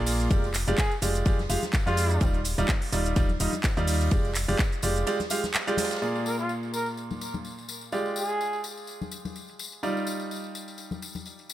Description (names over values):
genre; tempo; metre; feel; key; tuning
piano house; 126 BPM; 4/4; swing 55% on 16ths; F dorian; A4 = 440 Hz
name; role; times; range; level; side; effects
bright baby grand piano; riff; 0.0-11.5 s; Bb2 to F5; -30 LUFS; right 2 dB; sidechain pumping, tape echo
solid FM bass; bass; 0.0-5.0 s; Eb1 to F2; -27 LUFS; equal; sidechain pumping
house drum kit; drums; 0.1-11.5 s; handclaps, hi-hat, shaker; -31 LUFS; right 2 dB; low-pass filter on snare, low-pass filter on hats, low-pass filter on perc, low-pass filter on room
open jazz drum kit; drums; 0.1-6.0 s; hi-hat, ride cymbal, snare drum; -41 LUFS; right 2 dB; high-pass filter on cymbals, high-pass filter on hats, high-pass filter on snare, high-pass filter on room
tambourine and congas; percussion; 0.1-11.5 s; none; -38 LUFS; left 5 dB; none
electronic kick drum; drums; 0.3-4.7 s; none; -25 LUFS; equal; none
mellow trumpet; melody; 0.8-2.3, 6.3-8.6 s; F4 to Bb4; -34 LUFS; equal; tape echo
room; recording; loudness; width
light reverb, studio reverb; none; -24 LUFS; side -14 dB against mid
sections
0.0-6.0 A section; 6.0-11.5 B section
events
none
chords
0.3 Fm69; 2.2 Ebmaj9; 4.1 Fm69; 6.0 Bb7; 7.9 Fm69; 9.8 Ebmaj9